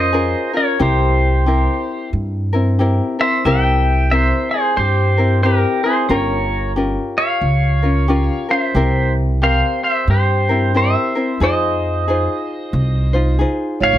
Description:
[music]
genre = Hawaiian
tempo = 90 BPM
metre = 4/4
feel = swing 61% on 8ths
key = unclear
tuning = A4 = 440 Hz
[part]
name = pedal steel guitar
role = melody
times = 0.0-14.0 s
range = G4 to G5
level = -18 LUFS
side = equal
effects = plate reverb
[part]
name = ukulele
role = accompaniment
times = 0.0-14.0 s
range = C4 to C5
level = -20 LUFS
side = left 2 dB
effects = plate reverb
[part]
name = upright bass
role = bass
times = 0.0-14.0 s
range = G1 to G2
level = -17 LUFS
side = right 1 dB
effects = none
[part]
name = vibraphone with soft mallets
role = second line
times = 13.8-14.0 s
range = Db5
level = -17 LUFS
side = right 12 dB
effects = none
[sound]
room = light reverb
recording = none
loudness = -14 LUFS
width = side -12 dB against mid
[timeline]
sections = 0.0-14.0 A section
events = none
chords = 0.0 Bbm7; 0.8 C7; 6.1 Gm7b5; 8.8 C7; 11.4 Fm7

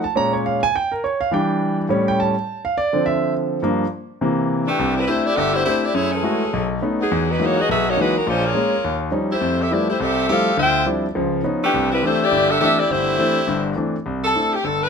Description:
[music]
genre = jazz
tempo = 207 BPM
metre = 4/4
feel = swing 60% on 8ths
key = C major from 4.8 s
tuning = A4 = 440 Hz
[part]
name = clear concert grand piano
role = accompaniment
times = 0.0-14.9 s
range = G1 to Bb5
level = -20 LUFS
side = equal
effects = none
[part]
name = clear saxophone section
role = melody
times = 4.7-14.9 s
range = E3 to G5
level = -18 LUFS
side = left 1 dB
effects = none
[sound]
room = moderate large studio reverb, RT60 1.1 s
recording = close, detailed microphones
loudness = -17 LUFS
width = side -6 dB against mid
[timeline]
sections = 0.0-4.8 A section; 4.8-14.1 B section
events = grand piano solo 0.0-4.8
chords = 0.2 Bbm7; 1.3 Em7; 1.9 A7; 2.5 Dm9; 3.6 Gm7; 4.2 C7; 4.8 C69; 5.9 F#m9; 6.5 B9; 7.1 Emaj9#11; 8.3 Bbm7; 8.8 Eb9; 9.4 Fmaj9; 10.6 Dm11; 11.2 Db9; 11.7 C69

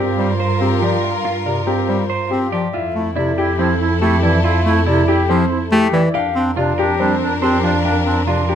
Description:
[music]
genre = classical, minimalist pattern music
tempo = 141 BPM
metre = 4/4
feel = straight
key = F major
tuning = A4 = 440 Hz
[part]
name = warm grand piano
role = melody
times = 0.0-8.6 s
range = G4 to F5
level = -22 LUFS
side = left 8 dB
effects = none
[part]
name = mellow clarinet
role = second line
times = 0.0-8.6 s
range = D4 to F4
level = -23 LUFS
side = right 4 dB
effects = none
[part]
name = warm symphonic string section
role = sustained chords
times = 0.0-8.6 s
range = D4 to Bb4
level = -24 LUFS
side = left 4 dB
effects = none
[part]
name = clean electric guitar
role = arpeggios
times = 0.0-8.6 s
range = C4 to C5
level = -24 LUFS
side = right 7 dB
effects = none
[part]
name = warm symphonic double bass section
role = bass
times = 0.0-8.6 s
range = F2 to G2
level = -21 LUFS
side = right 2 dB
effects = none
[part]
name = clear bass clarinet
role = accompaniment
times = 0.2-8.4 s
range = C3 to C4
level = -19 LUFS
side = equal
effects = none
[sound]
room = light reverb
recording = close, detailed microphones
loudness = -14 LUFS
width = side -9 dB against mid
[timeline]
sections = 0.0-2.7 A section; 2.7-8.6 B section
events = none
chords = 0.0 Gm7; 2.7 Fmaj9; 6.1 Bb6/F

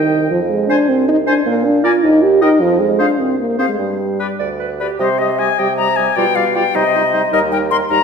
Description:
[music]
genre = quick classical-period movement for wind quintet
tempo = 104 BPM (dotted quarters)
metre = 6/8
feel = straight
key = C minor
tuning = A4 = 440 Hz
[part]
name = silver concert flute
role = melody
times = 0.0-8.0 s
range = C5 to C6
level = -18 LUFS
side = left 8 dB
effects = none
[part]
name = clear oboe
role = second line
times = 0.0-8.0 s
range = Bb4 to G5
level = -25 LUFS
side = left 4 dB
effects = none
[part]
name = clear clarinet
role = accompaniment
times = 0.0-8.0 s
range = Eb4 to Eb5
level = -23 LUFS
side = right 7 dB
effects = none
[part]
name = dark French horn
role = accompaniment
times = 0.0-8.0 s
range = Eb3 to G4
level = -16 LUFS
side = right 1 dB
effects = none
[part]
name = mellow bassoon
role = bass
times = 0.0-8.0 s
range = C2 to C3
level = -21 LUFS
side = right 4 dB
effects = none
[sound]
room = wet scoring stage reverb, RT60 1.5 s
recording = none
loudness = -13 LUFS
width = side -6 dB against mid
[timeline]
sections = 0.0-5.0 A section; 5.0-8.0 B section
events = none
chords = 0.3 Fm; 1.5 Bb; 2.0 Eb; 2.6 Fm; 3.8 G5; 5.0 Cm; 6.2 G7/B; 6.8 Cm; 7.3 Eb

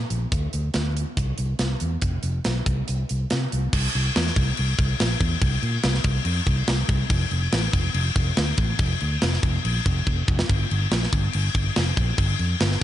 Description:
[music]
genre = hard rock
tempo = 142 BPM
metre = 4/4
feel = straight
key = unclear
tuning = A4 = 441 Hz
[part]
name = fingered electric bass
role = bass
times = 0.0-12.8 s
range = F1 to C3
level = -23 LUFS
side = equal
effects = none
[part]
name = tight metal drum kit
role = drums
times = 0.1-12.8 s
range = crash cymbal, hi-hat, kick drum, snare drum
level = -24 LUFS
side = equal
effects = none
[sound]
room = little or no reverb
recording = nothing above 10.8 kHz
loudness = -21 LUFS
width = side -12 dB against mid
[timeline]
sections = 0.0-3.7 A section; 3.7-12.8 B section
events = drum fill 10.1-10.5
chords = none

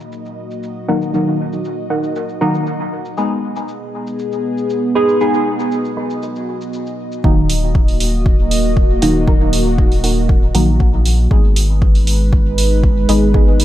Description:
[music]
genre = dub techno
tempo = 118 BPM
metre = 4/4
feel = straight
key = Eb minor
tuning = A4 = 438 Hz
[part]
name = dark analog pad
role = sustained chords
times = 0.1-13.6 s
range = Ab3 to Eb5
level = -21 LUFS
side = right 1 dB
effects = chorus, sidechain pumping
[part]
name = electronic shaker and hi-hat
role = drums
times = 0.0-13.6 s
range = none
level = -24 LUFS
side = right 3 dB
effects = low-pass filter on perc, low-pass filter on hats
[part]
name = warbly dusty pluck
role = riff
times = 0.9-13.3 s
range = Eb4 to Cb6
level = -26 LUFS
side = right 2 dB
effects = chorus, sidechain pumping, dub echo
[part]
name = deep mellow chord stab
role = stabs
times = 0.9-13.6 s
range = Eb3 to Ab4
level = -19 LUFS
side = equal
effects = chorus, phaser, sidechain pumping, dub echo
[part]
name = pure sine sub bass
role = bass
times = 7.2-13.6 s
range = Eb1 to Bb1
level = -16 LUFS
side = equal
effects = sidechain pumping
[part]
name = electronic kick drum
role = drums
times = 7.2-13.4 s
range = none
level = -13 LUFS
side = equal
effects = overdrive
[sound]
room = light reverb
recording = none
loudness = -13 LUFS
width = side -13 dB against mid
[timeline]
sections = 0.0-7.2 A section; 7.2-13.6 B section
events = filter sweep on analog synth pad 0.0-7.2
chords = 0.0 Ebm; 3.2 Abm; 7.2 Ebm; 11.3 Abm

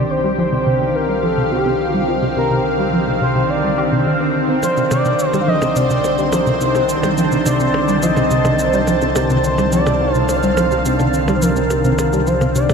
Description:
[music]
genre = ambient, sequencer-driven space music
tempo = 106 BPM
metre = 4/4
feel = straight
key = C dorian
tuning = A4 = 440 Hz
[part]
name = expressive synth lead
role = melody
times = 0.0-12.7 s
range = G4 to F5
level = -20 LUFS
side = equal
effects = chorus, tape echo
[part]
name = lush unison pad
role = sustained chords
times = 0.0-12.7 s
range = D3 to A5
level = -18 LUFS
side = equal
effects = chorus, phaser
[part]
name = plucky analog bass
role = riff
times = 0.0-12.7 s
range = C3 to G4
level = -20 LUFS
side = equal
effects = ensemble chorus, tape echo
[part]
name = analog drone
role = bass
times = 0.0-12.7 s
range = C2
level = -26 LUFS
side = equal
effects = chorus
[part]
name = percussion blips and cabasa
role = percussion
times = 4.6-12.7 s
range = none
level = -27 LUFS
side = right 1 dB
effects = tape echo
[sound]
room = wet huge ambient reverb, RT60 7.5 s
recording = none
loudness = -14 LUFS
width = side -6 dB against mid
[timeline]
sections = 0.0-12.7 A section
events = fade-in on synth drone 0.0-12.7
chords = 0.0 Cmadd9

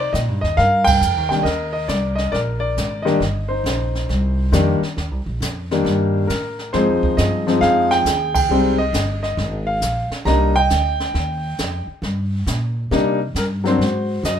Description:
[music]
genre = jazz piano trio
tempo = 136 BPM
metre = 4/4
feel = swing 66% on 8ths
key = C minor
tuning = A4 = 440 Hz
[part]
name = warm concert grand piano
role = melody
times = 0.0-14.4 s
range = Eb3 to Bb5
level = -18 LUFS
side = left 1 dB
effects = none
[part]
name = upright bass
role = bass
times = 0.0-14.4 s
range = G1 to C3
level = -22 LUFS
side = equal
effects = none
[part]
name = jazz brush drum kit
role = drums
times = 0.1-14.4 s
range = brushed snare drum, hi-hat, kick drum, ride cymbal, snare drum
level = -26 LUFS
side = right 2 dB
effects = none
[sound]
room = light reverb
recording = minimal, uncompressed stereo recording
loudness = -17 LUFS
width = side -9 dB against mid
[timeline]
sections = 0.0-14.4 A section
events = band accent 0.8, 8.3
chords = 0.0 Cm7; 6.7 Fm7; 10.3 Cm7; 13.8 Ab7

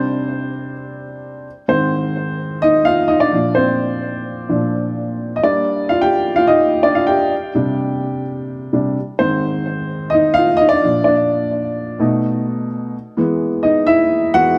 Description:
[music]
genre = pop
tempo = 128 BPM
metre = 4/4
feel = straight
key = unclear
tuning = A4 = 440 Hz
[part]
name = dark upright piano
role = solo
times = 0.0-14.6 s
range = Ab2 to G5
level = -17 LUFS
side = equal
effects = digital delay
[sound]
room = light reverb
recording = none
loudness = -17 LUFS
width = mono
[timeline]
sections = 0.0-12.9 A section; 12.9-14.6 B section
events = upright piano solo 0.0-12.9, 12.9-14.6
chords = 0.0 Csus2; 1.5 Ab; 3.3 Bb; 5.4 Gm; 7.3 Csus2; 9.0 Ab; 10.8 Bb; 12.0 B7; 12.9 E

